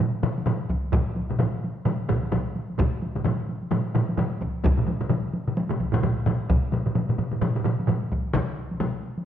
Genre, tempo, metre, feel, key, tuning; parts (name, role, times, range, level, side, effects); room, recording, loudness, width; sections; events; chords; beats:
japanese traditional, taiko drum ensemble; 129 BPM; 4/4; swing 60% on 16ths
taiko ensemble; percussion; 0.0-8.9 s; -28 LUFS; left 4 dB
taiko ensemble; percussion; 0.0-8.0 s; -28 LUFS; right 5 dB
solo taiko drums; percussion; 0.1-9.3 s; -29 LUFS; equal
taiko ensemble; percussion; 0.7-8.5 s; -27 LUFS; equal
wet recital hall reverb, RT60 1.4 s; worn, warbling old tape, cassette tape, warbly pitch drift; -23 LUFS; side -10 dB against mid
0.0-8.3 A section
0.00 0.46 | 0.93 1.40 1.86 2.33 | 2.79 3.25 3.72 4.18 | 4.65 5.11 5.57 6.04 | 6.50 6.96 7.42 7.88 | 8.35 8.81